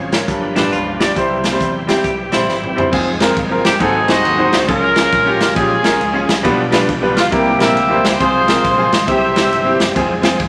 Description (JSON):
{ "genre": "uptempo gospel", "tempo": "136 BPM", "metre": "4/4", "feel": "swing 64% on 8ths", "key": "F harmonic minor", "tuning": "A4 = 440 Hz", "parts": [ { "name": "clear baby grand piano", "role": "accompaniment", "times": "0.0-10.4 s", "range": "G2 to F5", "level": "-19 LUFS", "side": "equal", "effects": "none" }, { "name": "bright tonewheel organ", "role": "sustained chords", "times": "0.0-10.5 s", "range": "E3 to Ab4", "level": "-28 LUFS", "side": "equal", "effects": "none" }, { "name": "fingered electric bass", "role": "bass", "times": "0.0-10.5 s", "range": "F1 to E2", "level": "-29 LUFS", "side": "equal", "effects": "none" }, { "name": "swinging big-band drum kit", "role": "drums", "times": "0.1-10.5 s", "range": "crash cymbal, hi-hat, kick drum, ride cymbal, snare drum, toms", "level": "-21 LUFS", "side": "equal", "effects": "none" }, { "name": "clean electric guitar", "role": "second line", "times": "0.6-2.9 s", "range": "C4 to G4", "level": "-27 LUFS", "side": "equal", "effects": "none" }, { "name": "warm horn section", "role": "melody", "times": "3.6-9.9 s", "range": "Bb3 to E5", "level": "-17 LUFS", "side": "equal", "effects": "none" } ], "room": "moderate large studio reverb, RT60 1.3 s", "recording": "none", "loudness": "-15 LUFS", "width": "mono", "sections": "0.0-2.9 A section; 2.9-10.5 B section", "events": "drum fill 2.5-2.9", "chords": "0.3 G7; 1.2 C; 2.9 Fm; 3.8 Ab7b9; 4.7 Db; 6.4 G7/B; 7.3 C7; 8.2 Fm/C; 9.1 C; 10.0 Fm" }